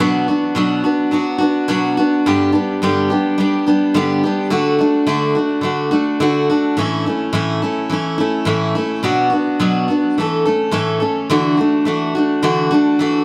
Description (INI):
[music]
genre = rock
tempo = 106 BPM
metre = 4/4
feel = straight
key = unclear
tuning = A4 = 440 Hz
[part]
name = picked steel-string acoustic guitar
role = solo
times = 0.0-13.2 s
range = G2 to A4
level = -17 LUFS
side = equal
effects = analog delay
[sound]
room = light reverb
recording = none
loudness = -17 LUFS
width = mono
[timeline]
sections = 0.0-11.3 A section; 11.3-13.2 B section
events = none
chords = 0.0 Bm; 2.2 G; 4.5 D; 6.8 A; 9.0 Bm; 10.2 A; 11.3 Dadd9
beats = 0.55 1.12 1.68 | 2.25 2.81 3.38 3.94 | 4.51 5.08 5.64 6.21 | 6.77 7.34 7.90 8.47 | 9.03 9.60 10.16 10.73 | 11.29 11.86 12.42 12.99